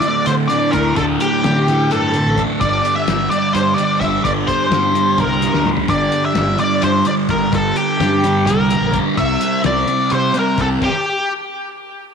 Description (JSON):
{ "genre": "psychedelic rock", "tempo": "256 BPM (eighths)", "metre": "7/8", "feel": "straight", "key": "unclear", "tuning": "A4 = 440 Hz", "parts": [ { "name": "octave-fuzz lead guitar", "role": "melody", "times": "0.0-11.3 s", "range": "G4 to E5", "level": "-18 LUFS", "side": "left 1 dB", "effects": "wah, distortion, tape echo" }, { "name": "thick fuzz guitar", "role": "riff", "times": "0.0-10.8 s", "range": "D2 to C4", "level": "-18 LUFS", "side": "right 1 dB", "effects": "distortion, phaser" }, { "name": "cloth-damped thuddy drum kit", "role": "drums", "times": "0.0-10.9 s", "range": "crash cymbal, hi-hat, kick drum, snare drum, toms", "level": "-25 LUFS", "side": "left 6 dB", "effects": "none" }, { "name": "fuzz fingered electric bass", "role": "bass", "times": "0.3-10.8 s", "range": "G1 to D3", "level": "-22 LUFS", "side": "right 1 dB", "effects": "overdrive" } ], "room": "light reverb, small room ambience", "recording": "1960s-style stereo", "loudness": "-14 LUFS", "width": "side -6 dB against mid", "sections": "0.0-12.1 A section", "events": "drum fill 5.5-5.9; stop 10.8-12.1", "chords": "0.0 D5; 2.6 G5; 9.2 C5" }